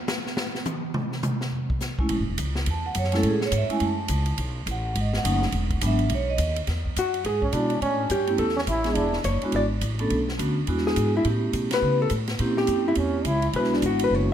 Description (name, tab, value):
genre	jazz, small-group swing and bop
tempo	210 BPM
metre	4/4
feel	swing 61% on 8ths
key	E mixolydian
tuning	A4 = 441 Hz
part	swinging big-band drum kit	drums	0.1-14.2 s	hi-hat, kick drum, ride cymbal, snare drum, toms	-30 LUFS	equal	none
part	vibraphone with medium hard mallets	accompaniment	2.0-14.3 s	F#3 to A5	-26 LUFS	right 2 dB	none
part	upright bass	bass	2.0-14.3 s	E1 to C#3	-26 LUFS	equal	none
part	vintage hollow-body jazz guitar	melody	7.0-14.3 s	D4 to D5	-26 LUFS	left 1 dB	wide subtle chorus
part	clear trombone	second line	7.4-9.2, 13.0-13.5 s	C#4 to E4	-28 LUFS	equal	ping-pong delay
room	light reverb, small room reverb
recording	none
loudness	-22 LUFS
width	side -10 dB against mid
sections	0.0-6.7 A section; 6.7-14.3 B section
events	drum solo 0.0-2.1; band accent 11.7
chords	0.0 N.C.; 1.5 C#5; 2.1 F#m7; 4.4 B7; 5.5 E7; 6.1 B; 6.7 E7; 7.8 A7; 9.0 E7; 10.1 Bm7; 10.7 E7; 11.3 A7; 12.4 A#dim7; 13.5 E7